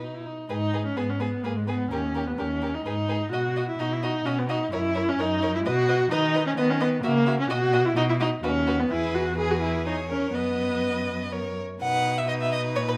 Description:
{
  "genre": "quick classical-period movement for string quartet",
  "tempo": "127 BPM",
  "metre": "3/4",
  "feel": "straight",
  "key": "G# minor, B major from 6.1 s",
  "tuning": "A4 = 442 Hz",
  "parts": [
    { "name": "rich violin", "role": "second line", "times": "0.0-13.0 s", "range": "D#4 to B4", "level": "-36 LUFS", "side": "equal", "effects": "none" },
    { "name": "rich viola", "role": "accompaniment", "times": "0.0-13.0 s", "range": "G#3 to G#4", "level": "-28 LUFS", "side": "equal", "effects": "none" },
    { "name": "rich cello", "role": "bass", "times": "0.0-13.0 s", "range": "D#2 to D#3", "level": "-32 LUFS", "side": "equal", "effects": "none" },
    { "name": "warm violin", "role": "melody", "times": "0.5-12.9 s", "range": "A#4 to F#5", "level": "-34 LUFS", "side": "equal", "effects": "none" }
  ],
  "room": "light reverb",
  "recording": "close, detailed microphones",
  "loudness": "-26 LUFS",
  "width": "mono",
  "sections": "0.5-11.8 A section; 11.8-13.0 B section",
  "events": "none",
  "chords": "0.5 G#m; 1.9 D#; 2.9 G#m; 3.3 B; 4.7 F#; 5.7 B; 6.1 B/D#; 7.0 F#/C# (rootless); 7.5 B; 8.4 B/D#; 8.9 E; 9.9 C#m/E; 10.3 B/F#; 11.3 F#; 11.8 B",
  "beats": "0.01 | 0.49 0.97 1.44 | 1.91 2.38 2.85 | 3.33 3.79 4.26 | 4.72 5.19 5.65 | 6.11 6.58 7.04 | 7.51 7.97 8.44 | 8.91 9.38 9.86 | 10.34 10.83 11.32 | 11.81 12.28 12.76"
}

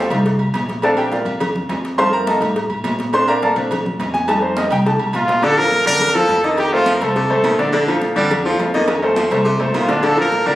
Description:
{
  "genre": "latin, salsa",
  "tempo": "209 BPM",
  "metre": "4/4",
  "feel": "straight",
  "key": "Bb major",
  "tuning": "A4 = 440 Hz",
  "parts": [
    { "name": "bright concert grand piano", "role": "accompaniment", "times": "0.0-10.6 s", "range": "D3 to C6", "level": "-17 LUFS", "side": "equal", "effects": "none" },
    { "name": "upright bass", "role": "bass", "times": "0.0-10.6 s", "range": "Bb1 to Bb2", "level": "-24 LUFS", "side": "equal", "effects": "none" },
    { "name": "agogo bells and timbales", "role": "percussion", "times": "0.1-10.6 s", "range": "none", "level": "-25 LUFS", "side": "right 2 dB", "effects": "none" },
    { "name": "congas", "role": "percussion", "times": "0.1-10.6 s", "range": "none", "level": "-28 LUFS", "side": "equal", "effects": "none" },
    { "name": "cowbell", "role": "percussion", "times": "0.1-10.5 s", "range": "none", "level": "-28 LUFS", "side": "left 2 dB", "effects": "none" },
    { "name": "clear trumpet", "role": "melody", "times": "5.2-7.6, 9.8-10.6 s", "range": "F4 to Bb4", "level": "-16 LUFS", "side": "equal", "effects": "none" },
    { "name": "bright baritone saxophone", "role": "second line", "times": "5.4-10.6 s", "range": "C3 to G3", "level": "-24 LUFS", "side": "right 1 dB", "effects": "none" }
  ],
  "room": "moderate large studio reverb, RT60 1.1 s",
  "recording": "recorded on a phone in the room, studio reverb",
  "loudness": "-14 LUFS",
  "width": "side -15 dB against mid",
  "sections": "0.0-5.4 A section; 5.4-10.6 B section",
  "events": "grand piano solo 0.0-5.4; drum fill 4.6-5.4, 8.9-10.0",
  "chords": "0.0 F7; 0.8 Bbmaj7; 2.0 F7; 3.1 Bbmaj7; 4.3 F7; 5.4 Bbmaj7; 6.6 F7; 7.7 Bbmaj7; 8.9 F7; 10.0 Bbmaj7",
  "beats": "0.26 0.55 | 0.83 1.12 1.41 1.70 | 1.98 2.27 2.56 2.84 | 3.13 3.42 3.71 3.99 | 4.28 4.57 4.86 5.14 | 5.43 5.72 6.01 6.29 | 6.58 6.87 7.16 7.44 | 7.73 8.02 8.31 8.59 | 8.88 9.17 9.46 9.74 | 10.03 10.32"
}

